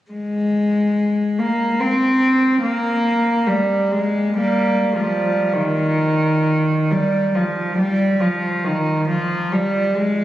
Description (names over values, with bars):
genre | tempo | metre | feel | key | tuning
classical, free, expressive piece for unaccompanied cello | 44-73 BPM | 3/4 | rubato | Ab major | A4 = 440 Hz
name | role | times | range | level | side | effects
warm cello | solo | 0.1-10.2 s | Eb3 to C4 | -16 LUFS | equal | none
room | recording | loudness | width
wet church reverb, RT60 3.7 s | recorded on a phone in the room, studio reverb | -16 LUFS | side -14 dB against mid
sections
0.1-5.5 A section; 5.5-10.2 B section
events
none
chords
none